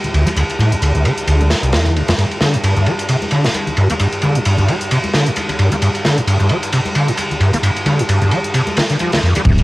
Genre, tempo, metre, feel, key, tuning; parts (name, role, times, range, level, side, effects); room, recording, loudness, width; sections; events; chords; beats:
breakbeat, breaks; 132 BPM; 4/4; swing 56% on 16ths; A4 = 440 Hz
electronic hi-hat; drums; 0.0-9.6 s; -31 LUFS; left 1 dB; cassette tape
congas; percussion; 0.0-9.4 s; -26 LUFS; left 1 dB
screaming distorted acid line; riff; 0.1-9.6 s; C2 to Bb3; -15 LUFS; equal; distortion, ensemble chorus, cassette tape, analog delay
crunchy breakbeat drum kit; drums; 0.1-9.6 s; kick drum, ride cymbal, snare drum; -18 LUFS; equal; high-pass filter on kick, cassette tape, high-pass filter on cymbals, high-pass filter on snare, high-pass filter on room
saturated sub bass; bass; 9.5-9.6 s; D1; -13 LUFS; equal
sub drop; sound effects; 9.5-9.6 s; barely audible
light reverb, small room ambience; home recording on cassette; -13 LUFS; side -19 dB against mid
0.0-9.5 A section
filter sweep on acid bass 0.0-9.5; impact 9.5
0.0 Dsus2; 2.2 G5
| 0.37 0.82 1.28 1.73 | 2.19 2.64 3.09 3.55 | 4.00 4.46 4.91 5.37 | 5.82 6.28 6.73 7.18 | 7.64 8.09 8.55 9.00 | 9.46